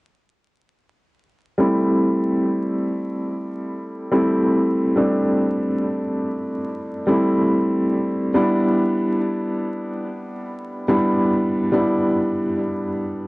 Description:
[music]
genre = trip hop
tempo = 71 BPM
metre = 4/4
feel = swing 56% on 16ths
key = A minor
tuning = A4 = 440 Hz
[part]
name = felt-muted upright piano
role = accompaniment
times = 1.6-13.3 s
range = G3 to E4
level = -18 LUFS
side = equal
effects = tremolo, vintage 12-bit sampler grit, low-pass filter, tape echo
[sound]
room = moderate spring reverb, RT60 1.2 s, studio ambience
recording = home recording on cassette, vinyl crackle, nothing above 10.4 kHz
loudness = -18 LUFS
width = side -24 dB against mid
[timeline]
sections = 1.6-13.3 A section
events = filter sweep on felt piano 1.6-13.3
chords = 1.6 Am7; 8.3 Em7

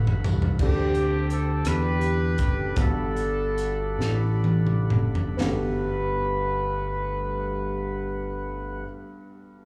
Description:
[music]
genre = slow gospel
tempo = 40-58 BPM (dotted quarters)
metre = 6/8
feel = straight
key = G major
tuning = A4 = 439 Hz
[part]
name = warm upright piano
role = accompaniment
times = 0.0-9.7 s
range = G2 to B4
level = -35 LUFS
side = equal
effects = slapback echo
[part]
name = tonewheel organ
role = sustained chords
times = 0.0-8.8 s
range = G3 to B5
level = -39 LUFS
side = equal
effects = slow rotary speaker
[part]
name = fingered electric bass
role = bass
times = 0.0-8.8 s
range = F#1 to E2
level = -29 LUFS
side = equal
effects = none
[part]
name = crisp fusion drum kit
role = drums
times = 0.1-5.6 s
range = crash cymbal, hi-hat, kick drum, rim click, snare drum, toms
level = -28 LUFS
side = equal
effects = none
[part]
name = tambourine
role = percussion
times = 0.3-0.6 s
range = none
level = -53 LUFS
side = equal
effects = none
[part]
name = clear horn section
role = melody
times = 0.6-8.8 s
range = C4 to B4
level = -31 LUFS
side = equal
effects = none
[sound]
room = small room ambience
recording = live gig heard through the venue's PA, club reverb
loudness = -25 LUFS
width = mono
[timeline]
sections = 0.6-5.4 A section; 5.4-9.7 B section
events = drum fill 0.0-0.6, 4.0-5.4; slowing down 0.6-5.4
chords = 0.0 Gmaj9; 0.6 D7sus4; 2.8 Gmaj9

